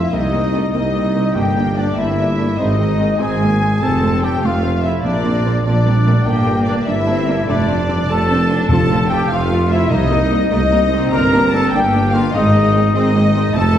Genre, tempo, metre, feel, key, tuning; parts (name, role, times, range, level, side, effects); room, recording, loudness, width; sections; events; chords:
cinematic, heroic adventure film score; 98 BPM (dotted quarters); 12/8; straight; A4 = 440 Hz
warm symphonic violin section; melody; 0.0-13.8 s; D5 to Bb5; -26 LUFS; left 4 dB
warm symphonic violin section; second line; 0.0-13.8 s; D5 to Bb5; -24 LUFS; left 3 dB
mellow trumpet section; stabs; 0.0-13.8 s; D4 to Bb4; -20 LUFS; equal
mellow tuba; bass; 0.0-13.8 s; F1 to C2; -20 LUFS; right 1 dB
warm symphonic double bass section; bass; 0.0-13.8 s; F1 to C2; -20 LUFS; right 1 dB
warm symphonic viola section; accompaniment; 0.1-13.8 s; Ab3 to F4; -22 LUFS; right 1 dB
rich symphonic cello section; bass; 0.1-13.8 s; F3 to D4; -22 LUFS; right 1 dB
timpani; percussion; 8.7-10.5 s; F2 to C3; -21 LUFS; left 1 dB
wet scoring stage reverb, RT60 1.5 s; heard from further back in the room; -13 LUFS; side -10 dB against mid
0.0-13.8 A section
0.1 Cm7; 1.4 Gm; 2.6 Ab; 3.8 F; 5.0 Bbadd9; 6.3 Gm; 7.5 Dm7/F; 8.7 F; 9.9 Cm7; 11.1 Gm; 12.3 Ab